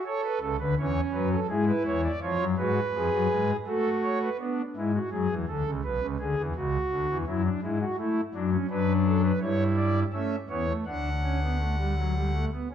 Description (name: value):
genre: classical, baroque-style 3-part fugue for pipe organ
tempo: 83 BPM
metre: 3/4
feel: straight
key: F# minor, D major from 8.7 s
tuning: A4 = 440 Hz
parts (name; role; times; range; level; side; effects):
- pipe organ, foundations; solo; 0.0-12.7 s; B1 to F#5; -25 LUFS; equal; none
room: wet recital hall reverb, RT60 1.5 s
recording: none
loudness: -25 LUFS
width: side -9 dB against mid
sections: 0.0-4.4 A section; 4.4-12.7 B section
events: none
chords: 0.0 F#m; 1.5 G#dim; 2.2 C#7/E#; 3.7 F#m/A; 4.4 Bm; 5.8 G#dim/B; 6.5 C#m; 8.0 A; 8.7 D/F#; 9.4 Em/G; 10.1 A; 10.9 D